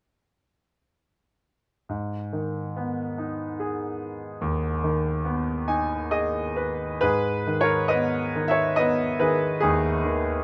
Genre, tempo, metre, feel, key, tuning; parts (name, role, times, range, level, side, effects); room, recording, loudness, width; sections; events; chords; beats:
classical, lyrical solo piano; 70 BPM; 3/4; uneven beats, rubato; G# minor; A4 = 438 Hz
bright grand piano; solo; 1.9-10.4 s; D#2 to G#5; -26 LUFS; equal
moderate small room reverb, RT60 0.5 s; -26 LUFS; mono
1.9-7.0 A section; 7.0-10.4 B section
grand piano fill 5.2-7.0
1.9 G#m
| 1.90 2.76 3.60 | 4.42 5.25 6.11 | 7.02 7.92 8.79 | 9.64